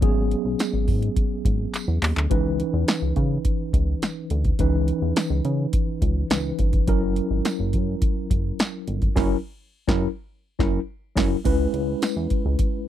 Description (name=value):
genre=early-eighties boogie funk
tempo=105 BPM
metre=4/4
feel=straight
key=C# dorian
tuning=A4 = 440 Hz
part: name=mellow tine electric piano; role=accompaniment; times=0.0-12.9 s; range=E3 to B4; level=-26 LUFS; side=left 1 dB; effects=medium stereo tremolo
part: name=chorused synth bass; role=bass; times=0.0-12.6 s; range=F#1 to C#3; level=-24 LUFS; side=equal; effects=none
part: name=electro analog drum machine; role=drums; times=0.0-12.7 s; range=crash cymbal, handclaps, hi-hat, kick drum, snare drum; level=-23 LUFS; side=equal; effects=none
part: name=tambourine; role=percussion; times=0.6-12.2 s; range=none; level=-39 LUFS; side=right 6 dB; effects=none
room=little or no reverb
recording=dry, close 1970s-style studio recording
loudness=-21 LUFS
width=side -12 dB against mid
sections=0.0-11.4 A section; 11.4-12.9 B section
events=drum fill 1.7-2.3; band accent 9.2-11.4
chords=0.0 G#m11; 2.3 C#m9; 6.9 F#7; 11.4 C#m7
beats=| 0.02 0.59 1.16 1.74 | 2.31 2.88 3.45 4.02 | 4.59 5.16 5.74 6.31 | 6.88 7.45 8.02 8.59 | 9.16 9.73 10.31 10.88 | 11.45 12.02 12.59